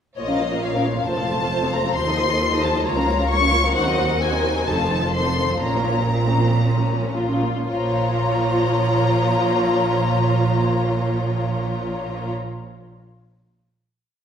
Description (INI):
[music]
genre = quick classical-period movement for string orchestra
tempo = 112-135 BPM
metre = 4/4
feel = straight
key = Bb minor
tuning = A4 = 440 Hz
[part]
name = rich studio violin section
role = melody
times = 0.2-12.3 s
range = Eb5 to Db6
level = -25 LUFS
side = left 3 dB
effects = none
[part]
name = warm studio violin section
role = second line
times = 0.2-12.3 s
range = C4 to F5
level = -25 LUFS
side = left 3 dB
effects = none
[part]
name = dark studio viola section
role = accompaniment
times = 0.2-12.3 s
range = Eb3 to F4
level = -25 LUFS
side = right 1 dB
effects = none
[part]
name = rich studio cello section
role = bass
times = 0.2-12.3 s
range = Db2 to Bb2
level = -26 LUFS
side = right 2 dB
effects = none
[part]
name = rich studio double bass section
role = bass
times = 0.2-12.3 s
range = F1 to Eb2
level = -25 LUFS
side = right 2 dB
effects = none
[sound]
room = wet recital hall reverb, RT60 1.6 s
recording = heard from further back in the room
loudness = -18 LUFS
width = side -8 dB against mid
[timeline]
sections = 0.2-7.7 A section; 7.7-11.9 final chord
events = slowing down 2.9-7.7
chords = 0.2 Bbm; 1.1 F; 2.0 F7/Eb; 2.9 Bbm/Db; 3.7 Cm7b5/Eb; 4.7 F7; 5.6 Bbm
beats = | 0.17 0.62 1.07 1.52 | 1.96 2.41 2.85 3.29 | 3.75 4.20 4.66 5.13 | 5.62 6.12 6.64 7.16 | 7.69 8.22 8.75 9.28 | 9.81 10.34 10.87 11.40